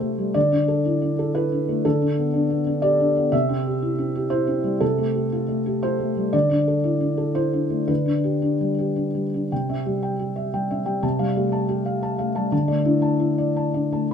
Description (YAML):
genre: neoclassical minimalist piano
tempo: 104-124 BPM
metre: 3/4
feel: rubato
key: C major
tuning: A4 = 440 Hz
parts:
  - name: felt-muted upright piano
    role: solo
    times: 0.0-14.1 s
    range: C3 to A5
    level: -20 LUFS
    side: equal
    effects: none
room: light reverb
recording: minimal, uncompressed stereo recording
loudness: -20 LUFS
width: side -7 dB against mid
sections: 0.0-9.5 A section; 9.5-14.1 B section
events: none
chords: 0.3 Dsus2; 1.8 G/D; 3.3 C; 4.8 Fadd9/C; 6.3 Dsus2; 7.9 G/D; 9.5 C; 11.0 Fadd9/C; 12.5 Dsus2